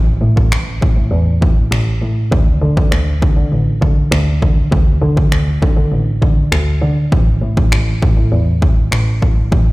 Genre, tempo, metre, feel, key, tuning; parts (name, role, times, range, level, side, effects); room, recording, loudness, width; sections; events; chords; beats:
dance-pop; 100 BPM; 4/4; straight; A4 = 440 Hz
dark double bass; bass; 0.0-9.7 s; A1 to D3; -14 LUFS; equal; sidechain pumping
punchy analog drum machine; drums; 0.4-9.7 s; finger snaps, kick drum; -14 LUFS; equal
little or no reverb; played on a big sound system in a bare room, large studio reverb; -11 LUFS; side -21 dB against mid
0.0-9.7 A section
0.52 1.12 1.72 | 2.32 2.92 3.52 4.12 | 4.72 5.32 5.92 6.52 | 7.12 7.72 8.32 8.92 | 9.52